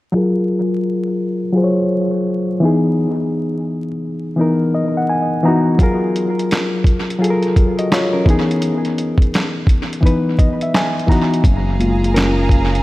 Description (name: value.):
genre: lo-fi hip hop.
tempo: 85 BPM.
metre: 4/4.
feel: swing 65% on 16ths.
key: F# major.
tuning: A4 = 439 Hz.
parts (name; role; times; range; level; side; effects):
barky reed electric piano; accompaniment; 0.1-12.8 s; E3 to A#5; -16 LUFS; left 1 dB; overdrive, low-pass filter, tape echo.
dusty soul sampler-style drum kit; drums; 5.8-12.8 s; handclaps, hi-hat, kick drum, snare drum; -16 LUFS; equal; tape echo.
clear studio string section; sustained chords; 11.4-12.8 s; G#4 to A#5; -25 LUFS; right 3 dB; none.
smooth synth bass; bass; 11.4-12.8 s; F#1; -17 LUFS; equal; none.
room: light reverb, digital ambience.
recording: echo-heavy mix, vinyl crackle.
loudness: -14 LUFS.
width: side -18 dB against mid.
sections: 0.1-11.4 A section; 11.4-12.8 B section.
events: filter sweep on reed electric piano 0.1-11.4; reed electric piano fill 4.4-5.8, 10.0-11.4; reed electric piano solo 11.4-12.8.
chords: 0.1 F#maj9; 2.6 Emaj9#11; 5.8 F#maj9; 8.3 Emaj7#11; 11.4 F#maj9.